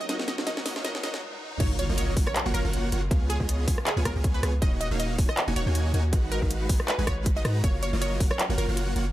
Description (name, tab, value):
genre	future bass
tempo	159 BPM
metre	4/4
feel	swing 55% on 16ths, half-time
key	unclear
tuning	A4 = 443 Hz
part	wide unison pluck	melody	0.0-8.9 s	Ab4 to Eb5	-34 LUFS	right 1 dB	sidechain pumping, dub echo
part	felt-muted upright piano	accompaniment	0.0-1.6 s	Gb3 to Bb4	-43 LUFS	left 3 dB	sidechain pumping, dub echo
part	rich symphonic string section	sustained chords	0.0-9.1 s	Db3 to Cb5	-40 LUFS	equal	none
part	long sustained 808-style bass	bass	0.0-9.1 s	Eb1 to Ab2	-27 LUFS	equal	sidechain pumping, high-pass filter
part	riser and impact	sound effects	0.0-3.1 s	none	-37 LUFS	equal	none
part	dense compressed supersaw	riff	0.1-9.1 s	Ab3 to Bb5	-33 LUFS	right 1 dB	sidechain pumping
part	trap drum kit	drums	0.1-9.0 s	crash cymbal, handclaps, hi-hat, rim click, snare drum, toms	-30 LUFS	equal	none
part	electronic kick drum	drums	1.6-8.3 s	none	-26 LUFS	equal	none
room	little or no reverb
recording	high-pass filter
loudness	-24 LUFS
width	side -15 dB against mid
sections	0.0-1.6 A section; 1.6-9.1 B section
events	build-up 0.0-1.6; drum fill 0.0-1.2, 1.2-1.6; break 1.2-1.6; drop 1.6-9.1; impact 1.6-3.1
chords	0.1 Abm7; 1.6 Gbmaj7; 3.1 Db7; 4.6 Ebm7; 6.1 Abm7; 7.6 Gbmaj7